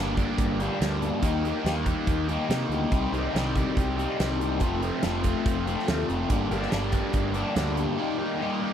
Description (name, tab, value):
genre	indie rock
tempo	142 BPM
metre	4/4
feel	straight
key	unclear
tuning	A4 = 440 Hz
part	crunchy overdriven guitar	riff	0.0-8.7 s	F2 to G4	-30 LUFS	right 8 dB	wide subtle chorus, slapback echo
part	raw garage guitar	riff	0.0-8.7 s	F2 to Eb4	-29 LUFS	left 10 dB	overdrive, phaser
part	fuzz picked electric bass	bass	0.0-7.8 s	F1 to C3	-30 LUFS	right 1 dB	overdrive
part	big rock drum kit	drums	0.2-7.9 s	hi-hat, kick drum, snare drum	-29 LUFS	right 1 dB	none
room	small room ambience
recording	dry, close 1970s-style studio recording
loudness	-24 LUFS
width	side -9 dB against mid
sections	0.0-8.7 A section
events	none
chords	0.0 Gm; 1.2 Eb; 2.9 Cm; 4.6 F; 6.3 Gm; 8.0 Eb